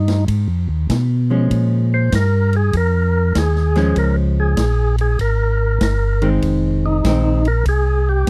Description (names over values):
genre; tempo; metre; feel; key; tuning
soul jazz organ trio; 98 BPM; 4/4; swing 66% on 8ths; unclear; A4 = 440 Hz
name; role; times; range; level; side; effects
percussive tonewheel organ; melody; 0.0-8.3 s; Eb4 to C5; -23 LUFS; equal; slow rotary speaker
mellow tonewheel organ; bass; 0.0-8.3 s; F1 to B2; -19 LUFS; equal; slow rotary speaker
swinging big-band drum kit; drums; 0.1-8.3 s; hi-hat, kick drum, ride cymbal, snare drum; -25 LUFS; equal; none
hollow-body jazz guitar; accompaniment; 1.3-7.4 s; Eb3 to Db4; -22 LUFS; equal; none
room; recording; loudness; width
little or no reverb; dry, close 1970s-style studio recording; -17 LUFS; mono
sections
0.0-8.3 A section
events
none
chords
0.0 Fm7; 1.5 Bbm7; 6.4 Fm7